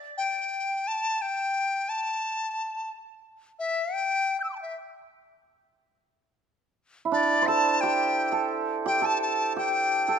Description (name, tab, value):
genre	chinese traditional, Chinese chamber ensemble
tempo	86 BPM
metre	2/4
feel	rubato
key	D shang mode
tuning	A4 = 440 Hz
part	bright reedy dizi	melody	0.2-4.8, 7.1-10.2 s	D5 to G6	-26 LUFS	left 2 dB	none
part	hammered dulcimer	second line	7.1-10.2 s	D4 to C5	-26 LUFS	right 6 dB	none
room	moderate concert hall reverb, RT60 2.0 s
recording	none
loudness	-24 LUFS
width	side -7 dB against mid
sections	0.0-6.1 A section; 6.1-10.2 B section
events	none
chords	none